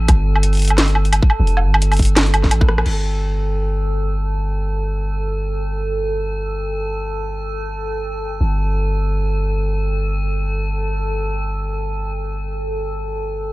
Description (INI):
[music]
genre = half-time drum and bass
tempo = free time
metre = none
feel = none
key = unclear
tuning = A4 = 440 Hz
[part]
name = long sustained 808-style bass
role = bass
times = 0.0-13.5 s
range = F1 to A1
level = -19 LUFS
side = equal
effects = transformer saturation
[part]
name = metallic inharmonic drone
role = texture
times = 0.0-13.5 s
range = A4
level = -26 LUFS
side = right 1 dB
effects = chorus, built-in reverb, phaser
[part]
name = drum and bass drum kit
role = drums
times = 0.1-2.9 s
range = crash cymbal, hi-hat, rim click, snare drum, woodblock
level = -18 LUFS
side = equal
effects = none
[part]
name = electronic kick drum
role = drums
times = 0.1-2.7 s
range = none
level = -14 LUFS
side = equal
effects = none
[sound]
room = little or no reverb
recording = dry, gritty hardware recording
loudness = -17 LUFS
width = side -18 dB against mid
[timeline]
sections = 0.0-2.9 A section; 2.9-13.5 B section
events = drop 0.0-2.9; drum fill 2.6; band accent 2.8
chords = 0.0 Gsus2